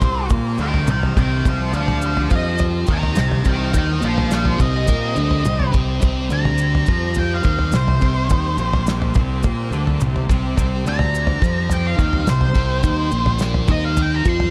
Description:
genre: psychedelic rock.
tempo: 105 BPM.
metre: 4/4.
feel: straight.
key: C minor.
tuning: A4 = 436 Hz.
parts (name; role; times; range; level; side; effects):
octave-fuzz lead guitar; melody; 0.0-14.5 s; C5 to C6; -27 LUFS; equal; wah, distortion, dub echo.
bright studio string section; sustained chords; 0.0-14.5 s; G3 to C5; -35 LUFS; equal; none.
thick fuzz guitar; riff; 0.0-14.5 s; Bb2 to Bb4; -25 LUFS; equal; distortion, phaser, dub echo.
fuzz fingered electric bass; bass; 0.0-14.5 s; Bb1 to Bb2; -24 LUFS; equal; overdrive.
cloth-damped thuddy drum kit; drums; 0.0-14.5 s; kick drum, snare drum, toms; -22 LUFS; equal; none.
maracas; percussion; 0.0-14.4 s; none; -39 LUFS; equal; none.
room: little or no reverb.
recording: echo-heavy mix.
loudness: -19 LUFS.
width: mono.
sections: 0.0-14.5 A section.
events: lead electric guitar solo 0.0-14.5.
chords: 0.0 Cm.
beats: 0.30 0.88 | 1.45 2.02 2.60 3.17 | 3.74 4.31 4.88 5.46 | 6.03 6.60 7.17 7.74 | 8.30 8.87 9.44 10.01 | 10.58 11.15 11.71 12.28 | 12.85 13.42 13.98.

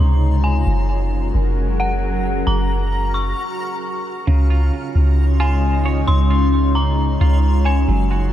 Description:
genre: hip hop.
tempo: 133 BPM.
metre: 4/4.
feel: half-time.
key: Db major.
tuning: A4 = 440 Hz.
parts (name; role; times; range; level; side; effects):
dark detuned synth bell; melody; 0.0-7.9 s; Gb5 to Db6; -25 LUFS; left 1 dB; chorus, tremolo, digital delay.
glassy FM pad; sustained chords; 0.0-8.3 s; C3 to Bb4; -23 LUFS; equal; ensemble chorus, built-in reverb.
soft 808-style bass; bass; 0.0-8.3 s; Gb1 to Db2; -16 LUFS; equal; none.
backwards swelling texture; texture; 0.0-8.3 s; F4 to F6; -32 LUFS; equal; built-in reverb.
semi-hollow electric guitar; arpeggios; 4.3-8.3 s; Db3 to Db5; -27 LUFS; right 6 dB; harmonic tremolo, digital delay.
room: little or no reverb.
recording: dark, warm production.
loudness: -15 LUFS.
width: side -12 dB against mid.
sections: 0.0-4.3 A section; 4.3-8.3 B section.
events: stop 3.4-4.3.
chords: 0.0 Dbmaj7; 0.7 Gbmaj7; 4.3 Dbmaj7.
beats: 0.22 | 0.67 1.12 1.57 2.02 | 2.47 2.92 3.37 3.83 | 4.28 4.73 5.18 5.63 | 6.08 6.53 6.98 7.43 | 7.88.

